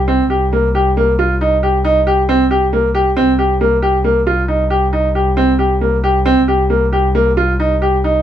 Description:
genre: contemporary instrumental, chamber music in an uneven meter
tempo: 136 BPM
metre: 7/4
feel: straight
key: C minor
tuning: A4 = 439 Hz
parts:
  - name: warm double bass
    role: bass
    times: 0.0-8.2 s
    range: C2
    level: -17 LUFS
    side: left 1 dB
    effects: none
  - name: bright baby grand piano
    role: arpeggios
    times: 0.1-8.2 s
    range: Bb3 to G4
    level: -13 LUFS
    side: right 1 dB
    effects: none
room: light reverb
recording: minimal, uncompressed stereo recording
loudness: -12 LUFS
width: side -10 dB against mid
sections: 0.0-8.2 A section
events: none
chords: 0.0 C7(no3)

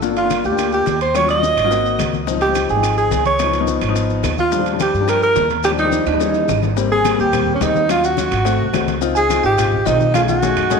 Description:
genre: Afro-Cuban jazz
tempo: 213 BPM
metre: 4/4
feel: straight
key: Eb major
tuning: A4 = 441 Hz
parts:
  - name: warm baby grand piano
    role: accompaniment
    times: 0.0-10.8 s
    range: Fb3 to G#4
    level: -21 LUFS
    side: left 9 dB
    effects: none
  - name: upright bass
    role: bass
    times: 0.0-10.8 s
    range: G1 to G2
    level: -23 LUFS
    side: right 2 dB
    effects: none
  - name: bongos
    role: percussion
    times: 0.0-10.8 s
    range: none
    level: -30 LUFS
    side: left 11 dB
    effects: none
  - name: congas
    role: percussion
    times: 0.0-10.8 s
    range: none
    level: -28 LUFS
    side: left 10 dB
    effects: none
  - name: maracas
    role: percussion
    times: 0.0-10.8 s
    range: none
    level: -33 LUFS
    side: left 11 dB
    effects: none
  - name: clear alto saxophone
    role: melody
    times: 0.2-10.8 s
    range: Db4 to Eb5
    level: -18 LUFS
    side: right 1 dB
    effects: tape echo
  - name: bell-like tine electric piano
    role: second line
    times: 0.2-10.8 s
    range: Db5 to Eb6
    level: -24 LUFS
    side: right 8 dB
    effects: none
  - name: timbales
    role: percussion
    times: 0.2-10.8 s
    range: none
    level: -28 LUFS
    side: right 13 dB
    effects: none
  - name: claves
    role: percussion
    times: 0.3-10.7 s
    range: none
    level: -34 LUFS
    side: right 12 dB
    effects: none
room: wet echo chamber reverb, RT60 1.5 s, studio reverb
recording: 1960s-style stereo with parts hard left and right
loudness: -14 LUFS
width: side -5 dB against mid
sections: 0.0-6.8 A section; 6.8-10.8 B section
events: drum fill 5.9-6.8, 10.1-10.8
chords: 0.0 Gm7; 1.1 Ebm7; 1.7 Ab7; 2.3 Dbmaj7; 3.4 Db9; 4.5 Ebmaj7; 6.2 Eb7b9; 6.8 Abmaj9; 7.9 Ebm9; 8.5 Ab7b9; 9.0 Dbmaj9; 10.1 B13

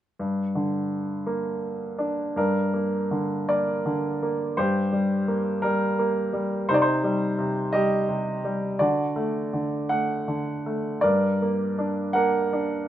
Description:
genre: classical, lyrical solo piano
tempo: 55 BPM (dotted quarters)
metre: 6/8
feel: uneven beats, rubato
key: G harmonic minor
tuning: A4 = 440 Hz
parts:
  - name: clear baby grand piano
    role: solo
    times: 0.2-12.9 s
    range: G2 to F#5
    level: -23 LUFS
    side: equal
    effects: none
room: light reverb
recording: minimal, uncompressed stereo recording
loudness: -23 LUFS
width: side -12 dB against mid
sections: 0.2-2.4 A section; 2.4-12.9 B section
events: none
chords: 0.2 Gm; 4.6 Gmadd11; 6.7 Cm; 8.8 D; 11.0 Gm

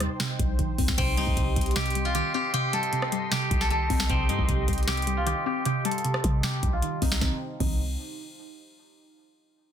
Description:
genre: hip hop, trap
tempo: 154 BPM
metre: 4/4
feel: half-time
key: C dorian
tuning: A4 = 440 Hz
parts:
  - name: warbly dusty pluck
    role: accompaniment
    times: 0.0-7.8 s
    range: C3 to C4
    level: -31 LUFS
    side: equal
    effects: chorus, low-pass filter
  - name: sweeping resonant pad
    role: sustained chords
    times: 0.0-7.4 s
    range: Eb4 to C6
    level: -37 LUFS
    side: right 1 dB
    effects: chorus, phaser, low-pass filter
  - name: clean 808-style bass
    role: bass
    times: 0.0-8.0 s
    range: Bb1 to C3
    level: -29 LUFS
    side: equal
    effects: none
  - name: booming analog drum machine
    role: drums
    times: 0.0-7.8 s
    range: crash cymbal, finger snaps, hi-hat, kick drum, rim click, snare drum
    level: -28 LUFS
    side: equal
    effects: none
  - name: steel-string zither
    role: melody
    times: 1.0-7.8 s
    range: C4 to A4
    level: -29 LUFS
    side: left 1 dB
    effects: low-pass filter, ping-pong delay
room: little or no reverb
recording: dense, heavily limited modern master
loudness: -24 LUFS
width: side -9 dB against mid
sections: 1.0-7.2 A section; 7.2-8.8 B section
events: filter sweep 1.0-7.2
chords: 0.0 Cm

